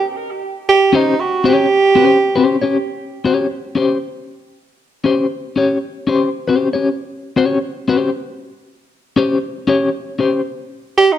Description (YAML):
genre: funk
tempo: 117 BPM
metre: 4/4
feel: swing 56% on 16ths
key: unclear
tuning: A4 = 438 Hz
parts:
  - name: warm tenor saxophone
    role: melody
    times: 0.0-2.7, 11.0-11.2 s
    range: Eb4 to G4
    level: -13 LUFS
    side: right 4 dB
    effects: analog delay
  - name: electric guitar at the edge of break-up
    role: accompaniment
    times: 0.9-10.4 s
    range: Db4 to Db5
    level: -16 LUFS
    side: left 4 dB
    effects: tremolo
room: moderate large studio reverb, RT60 1.4 s, studio ambience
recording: dark, warm production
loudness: -14 LUFS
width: side -11 dB against mid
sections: 0.0-2.7 A section; 2.7-11.0 B section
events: tenor saxophone solo 0.0-2.7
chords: 0.0 C5